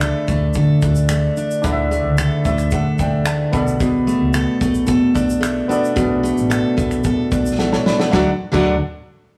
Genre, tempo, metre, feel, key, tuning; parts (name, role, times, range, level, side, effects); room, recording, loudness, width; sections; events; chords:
acoustic pop; 111 BPM; 4/4; straight; D major; A4 = 443 Hz
clear upright piano; accompaniment; 0.0-8.8 s; B3 to B5; -28 LUFS; equal
picked steel-string acoustic guitar; accompaniment; 0.0-8.8 s; B2 to A4; -20 LUFS; equal
hollow-body short-scale fingered electric bass; bass; 0.0-8.8 s; A1 to D3; -23 LUFS; equal
loose indie drum kit; drums; 0.0-8.7 s; crash cymbal, finger snaps, kick drum, shaker, snare drum; -26 LUFS; equal
light reverb; rough rehearsal-room recording, warm saturation; -17 LUFS; mono
0.0-8.1 A section; 8.1-9.4 B section
upright piano fill 2.2-3.8; drum fill 7.6-8.1
0.0 Dsus2; 3.5 Bm7; 8.1 D